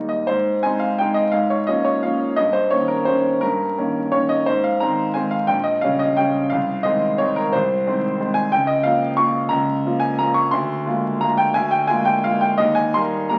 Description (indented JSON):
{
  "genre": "classical, piano waltz",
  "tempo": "151-190 BPM",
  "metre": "3/4",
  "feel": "rubato",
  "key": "Ab major",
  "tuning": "A4 = 440 Hz",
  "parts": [
    { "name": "warm concert grand piano", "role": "solo", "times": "0.0-13.4 s", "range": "Bb1 to Db6", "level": "-20 LUFS", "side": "equal", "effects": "none" }
  ],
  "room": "wet large studio reverb, RT60 1.1 s",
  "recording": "very old 78 rpm record, vinyl crackle",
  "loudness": "-20 LUFS",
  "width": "mono",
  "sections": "0.3-13.4 A section",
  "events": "none",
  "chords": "0.3 Ab; 1.3 Bbm7/Ab; 2.4 Eb7/G; 4.5 Ab; 5.5 Gdim/Bb; 6.5 Ab/C; 8.5 Bbm/Db; 10.5 Bb7/D; 12.6 Eb"
}